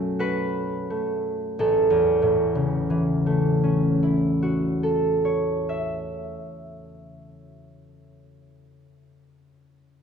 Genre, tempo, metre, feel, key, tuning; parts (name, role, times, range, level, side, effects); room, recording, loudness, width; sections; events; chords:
classical, solo harp piece; 46 BPM; 4/4; rubato; A major; A4 = 440 Hz
concert harp; solo; 0.0-8.3 s; A1 to E5; -21 LUFS; equal
wet recital hall reverb, RT60 1.4 s; recorded in a church or concert hall; -20 LUFS; side -7 dB against mid
0.0-1.6 A section; 1.6-6.8 B section
slowing down 0.0-1.6
0.0 B5; 1.6 A6